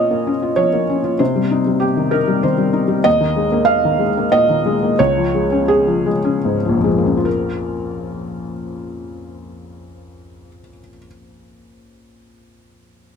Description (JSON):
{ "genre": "neoclassical minimalist piano", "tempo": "72-98 BPM", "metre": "3/4", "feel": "rubato", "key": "Bb dorian", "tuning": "A4 = 439 Hz", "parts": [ { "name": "felt-muted upright piano", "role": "solo", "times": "0.0-13.2 s", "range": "Bb1 to F5", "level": "-15 LUFS", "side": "left 1 dB", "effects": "none" } ], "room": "moderate studio reverb, RT60 0.5 s", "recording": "none", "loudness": "-14 LUFS", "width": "side -6 dB against mid", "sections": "0.0-7.3 A section; 7.3-12.1 B section", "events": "slowing down 2.1-7.3", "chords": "0.0 Bbm; 1.2 Cm; 3.1 Ebsus4; 5.0 Db; 7.3 Bbm", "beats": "0.57 | 1.20 1.83 2.44 | 3.06 3.68 4.32 | 4.99 5.69 6.44 | 7.25 8.07 8.87 | 9.66 10.47 11.28" }